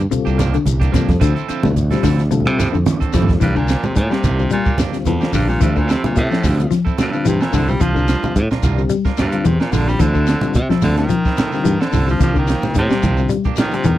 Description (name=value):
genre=afrobeat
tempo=109 BPM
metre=4/4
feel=swing 55% on 16ths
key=C mixolydian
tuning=A4 = 440 Hz
part: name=electric guitar at the edge of break-up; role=arpeggios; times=0.0-14.0 s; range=C3 to G3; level=-22 LUFS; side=left 6 dB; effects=tape echo
part: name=modern bright fingered electric bass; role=bass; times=0.0-14.0 s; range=Bb1 to C3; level=-18 LUFS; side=equal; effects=none
part: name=compact cocktail drum kit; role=drums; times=0.0-14.0 s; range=hi-hat, kick drum, snare drum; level=-20 LUFS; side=right 1 dB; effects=none
part: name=percussive tonewheel organ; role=accompaniment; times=0.1-13.9 s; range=D3 to A4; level=-22 LUFS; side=left 6 dB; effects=slow rotary speaker, chorus vibrato
part: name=congas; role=percussion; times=0.1-14.0 s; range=none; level=-23 LUFS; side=right 2 dB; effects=none
part: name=shekere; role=percussion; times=0.1-14.0 s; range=none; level=-29 LUFS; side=left 6 dB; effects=none
part: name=electric guitar at the edge of break-up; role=stabs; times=0.3-13.8 s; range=F3 to Bb4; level=-26 LUFS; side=right 7 dB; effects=warbly pitch drift
part: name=claves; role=percussion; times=0.3-3.1 s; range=none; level=-37 LUFS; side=right 19 dB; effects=none
part: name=growling baritone saxophone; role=melody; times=3.4-14.0 s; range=F2 to G3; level=-22 LUFS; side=right 1 dB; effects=none
room=light reverb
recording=dry, close 1970s-style studio recording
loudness=-14 LUFS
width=side -14 dB against mid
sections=0.0-3.4 A section; 3.4-14.0 B section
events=drum fill 2.3-3.4; baritone saxophone solo 3.4-14.0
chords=0.0 C9sus4; 1.2 Dm9; 3.4 C9sus4; 5.6 Dm9; 7.8 C9sus4; 10.0 Dm9; 12.2 C9sus4